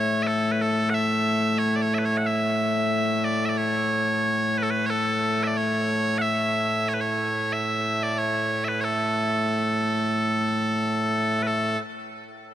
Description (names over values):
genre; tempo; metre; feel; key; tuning
scottish traditional; 91 BPM; 4/4; straight; A major; A4 = 440 Hz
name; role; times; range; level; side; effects
loud bright bagpipes; solo; 0.0-11.8 s; A2 to F#5; -22 LUFS; equal; none
room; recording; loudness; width
moderate huge ambient reverb, RT60 5.8 s; none; -22 LUFS; side -11 dB against mid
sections
0.0-11.5 A section; 11.5-12.5 B section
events
none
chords
none